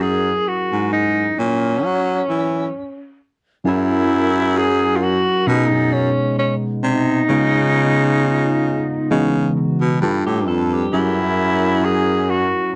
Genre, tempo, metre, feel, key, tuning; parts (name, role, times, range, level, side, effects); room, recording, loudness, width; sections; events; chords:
R&B; 66 BPM; 4/4; swing 54% on 16ths; A4 = 440 Hz
breathy tenor saxophone; melody; 0.0-12.7 s; C#4 to G#4; -22 LUFS; equal; slapback echo
tine electric piano; accompaniment; 0.0-12.8 s; B2 to B4; -24 LUFS; equal; phaser
breathy baritone saxophone; bass; 0.0-12.5 s; F2 to F#3; -22 LUFS; equal
hollow soft pad; sustained chords; 3.6-12.7 s; C#3 to B4; -29 LUFS; equal
electric guitar through a small old amp; second line; 10.3-11.2 s; G4 to A4; -30 LUFS; equal; spring reverb
little or no reverb; dry, close 1970s-style studio recording; -18 LUFS; mono
0.0-3.6 A section; 3.6-12.8 B section
stop 2.7-3.6
0.0 F#7; 5.5 B69; 7.3 C#9; 9.1 C#m11; 10.0 G9; 10.9 F#7